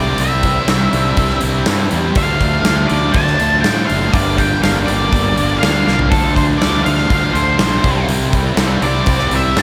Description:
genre	quiet-loud alternative rock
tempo	121 BPM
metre	4/4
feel	straight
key	D minor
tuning	A4 = 440 Hz
part	octave-fuzz lead guitar	melody	0.0-9.6 s	A4 to A5	-21 LUFS	equal	distortion
part	electric guitar through a small old amp	arpeggios	0.0-6.1 s	G2 to D4	-28 LUFS	equal	none
part	distorted electric guitar	riff	0.0-9.6 s	G2 to E4	-23 LUFS	equal	overdrive, slapback echo
part	thick fuzz guitar	riff	0.0-9.6 s	G2 to E4	-25 LUFS	equal	none
part	fuzz fingered electric bass	bass	0.0-9.6 s	F#1 to A2	-21 LUFS	equal	overdrive
part	huge arena drum kit	drums	0.2-9.6 s	hi-hat, kick drum, snare drum, toms	-20 LUFS	equal	none
room	moderate concert hall reverb, RT60 2.3 s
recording	big arena sound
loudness	-15 LUFS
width	mono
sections	0.0-9.6 A section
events	lead electric guitar solo 0.0-9.6; drum fill 5.9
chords	0.0 Cadd9; 2.2 Dm; 4.1 Gm7; 6.1 Dm; 7.9 Cadd9

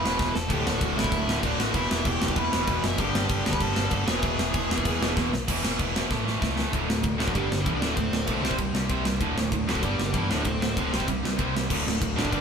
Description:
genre	punk rock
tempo	193 BPM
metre	4/4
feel	straight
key	D mixolydian from 6.7 s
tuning	A4 = 438 Hz
part	biting lead guitar	melody	0.0-5.1, 7.2-12.4 s	E3 to B5	-31 LUFS	equal	overdrive
part	distorted electric guitar	riff	0.0-12.4 s	D2 to C4	-32 LUFS	left 7 dB	distortion
part	fuzz guitar	riff	0.0-12.4 s	D2 to C5	-32 LUFS	equal	distortion
part	tight distorted guitar	riff	0.0-12.4 s	D2 to C4	-31 LUFS	right 8 dB	distortion
part	overdriven picked electric bass	bass	0.0-12.4 s	D1 to G2	-32 LUFS	equal	none
part	tight metal drum kit	drums	0.1-12.4 s	crash cymbal, kick drum, ride cymbal, snare drum	-28 LUFS	equal	none
room	light reverb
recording	band playing live in one room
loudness	-23 LUFS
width	side -6 dB against mid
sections	0.0-5.5 A section; 5.5-6.7 B section; 6.7-12.4 C section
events	drum fill 0.2-0.5, 5.2-5.5, 6.1-6.7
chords	0.0 E; 0.5 D; 1.7 Em; 3.0 G; 4.1 E; 5.5 E5; 6.1 A; 6.7 D; 7.3 G; 7.8 D; 8.4 C; 9.2 D; 9.8 G; 10.3 D; 10.9 C; 11.7 D

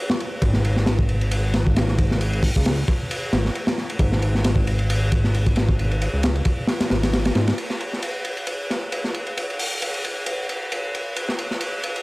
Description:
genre	breakbeat, breaks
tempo	134 BPM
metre	4/4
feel	swing 55% on 16ths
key	unclear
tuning	A4 = 440 Hz
part	crunchy breakbeat drum kit	drums	0.1-12.0 s	hi-hat, kick drum, ride cymbal, snare drum	-22 LUFS	equal	high-pass filter on kick, high-pass filter on cymbals, high-pass filter on hats, high-pass filter on snare, high-pass filter on room
part	fat analog bass	bass	0.4-7.5 s	Ab1 to Ab2	-21 LUFS	equal	tube saturation
room	little or no reverb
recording	none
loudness	-20 LUFS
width	side -22 dB against mid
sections	0.0-7.6 A section; 7.6-12.0 B section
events	none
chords	none

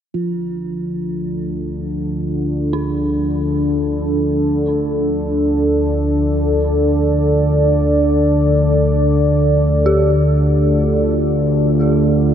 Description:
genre	dark ambient drone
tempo	46 BPM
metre	4/4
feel	straight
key	unclear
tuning	A4 = 439 Hz
part	bronze singing bowl	texture	0.1-12.3 s	F3 to F4	-28 LUFS	right 1 dB	none
part	dark analog pad	sustained chords	0.2-12.3 s	D4 to D5	-18 LUFS	equal	chorus
part	analog drone	drone	0.6-12.3 s	D2 to D3	-17 LUFS	equal	chorus
part	dark detuned synth bell	arpeggios	2.7-12.3 s	D4 to G4	-24 LUFS	right 1 dB	chorus, diffuse ambient delay
room	wet huge ambient reverb, RT60 8.4 s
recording	in a vast, echoing space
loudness	-14 LUFS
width	side -8 dB against mid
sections	0.2-12.3 A section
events	none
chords	0.2 Dm

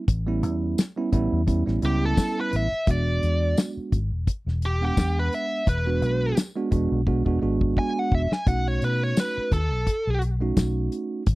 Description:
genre	straight-eighth soul blues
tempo	86 BPM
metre	4/4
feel	swing 56% on 16ths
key	E mixolydian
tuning	A4 = 437 Hz
part	bell-like tine electric piano	accompaniment	0.0-11.2 s	G3 to F#5	-27 LUFS	right 3 dB	none
part	vintage muted fingered electric bass	bass	0.1-11.3 s	E1 to B2	-25 LUFS	left 1 dB	none
part	damped 70s drum kit	drums	0.1-11.3 s	hi-hat, kick drum, snare drum, tambourine	-23 LUFS	left 1 dB	none
part	biting lead guitar	melody	1.9-10.2 s	G4 to G#5	-27 LUFS	equal	overdrive, slapback echo
room	little or no reverb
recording	dry, close 1970s-style studio recording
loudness	-22 LUFS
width	side -19 dB against mid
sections	0.0-11.3 A section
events	drum fill 7.1-8.5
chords	0.0 A7; 2.9 E7; 8.5 B7

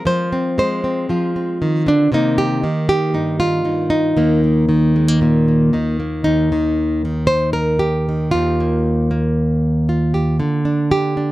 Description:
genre	folk, solo fingerstyle acoustic guitar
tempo	116 BPM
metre	4/4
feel	straight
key	Eb major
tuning	A4 = 440 Hz
part	nylon-string guitar	solo	0.0-11.3 s	Eb2 to C5	-15 LUFS	equal	none
room	little or no reverb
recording	close, detailed microphones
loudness	-15 LUFS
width	side -16 dB against mid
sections	0.0-6.3 A section; 6.3-11.3 B section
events	none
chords	0.0 Fm; 2.1 Cm7; 4.2 Eb5; 6.3 Ebadd9; 10.4 Bb/D

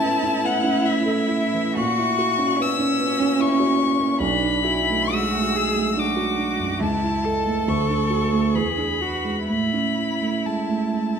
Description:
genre	classical, slow romantic movement for piano trio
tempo	61-76 BPM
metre	3/4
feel	rubato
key	A major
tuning	A4 = 440 Hz
part	rich violin	melody	0.0-11.2 s	E5 to E6	-24 LUFS	left 6 dB	none
part	clear cello	second line	0.0-11.2 s	C#4 to A4	-26 LUFS	right 4 dB	none
part	dark baby grand piano	accompaniment	0.0-11.2 s	B1 to A4	-22 LUFS	right 2 dB	none
room	moderate recital hall reverb, RT60 1.5 s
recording	none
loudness	-19 LUFS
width	side -7 dB against mid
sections	0.0-11.2 A section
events	none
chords	0.0 A; 1.8 F#7/A#; 4.2 Bm7; 6.8 A/C#; 7.7 Dmaj7; 8.5 E9; 9.5 A

